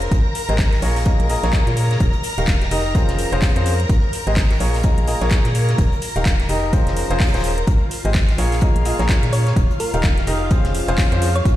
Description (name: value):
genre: piano house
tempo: 127 BPM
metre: 4/4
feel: swing 59% on 16ths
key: Bb dorian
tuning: A4 = 440 Hz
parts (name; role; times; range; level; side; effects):
- string machine, violins; sustained chords; 0.0-11.6 s; F4 to Bb5; -27 LUFS; left 1 dB; ensemble chorus, sidechain pumping
- organ-like FM bass; bass; 0.0-11.6 s; Eb1 to Bb2; -20 LUFS; equal; sidechain pumping
- house drum kit; drums; 0.0-11.6 s; handclaps, hi-hat; -28 LUFS; equal; overdrive
- big rock drum kit; drums; 0.1-11.6 s; hi-hat, snare drum; -35 LUFS; left 1 dB; sidechain pumping on hats, high-pass filter on hats, high-pass filter on snare, high-pass filter on room
- electronic kick drum; drums; 0.1-11.6 s; none; -17 LUFS; equal; overdrive
- clear concert grand piano; riff; 0.5-11.3 s; Eb3 to F5; -24 LUFS; left 1 dB; sidechain pumping, tape echo
- thumb-piano-like synth pluck; melody; 9.3-11.5 s; Bb4 to Db5; -27 LUFS; equal; chorus, vintage 12-bit sampler grit, tape echo
room: small room reverb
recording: played on a big sound system in a bare room, stone room reverb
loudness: -16 LUFS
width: side -14 dB against mid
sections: 0.0-11.6 A section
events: none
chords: 0.1 Abmaj7; 0.8 Bbm7; 2.0 Eb; 3.0 Dbmaj7/F; 3.9 Abmaj7; 4.6 Bbm7; 5.8 Eb; 6.7 Dbmaj7/F; 7.7 Abmaj7; 8.4 Bbm7; 9.6 Eb; 10.5 Dbmaj7/F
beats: | 0.12 0.59 1.06 1.53 | 2.00 2.48 2.95 3.42 | 3.90 4.37 4.84 5.31 | 5.79 6.26 6.73 7.20 | 7.67 8.15 8.62 9.09 | 9.56 10.04 10.51 10.98 | 11.45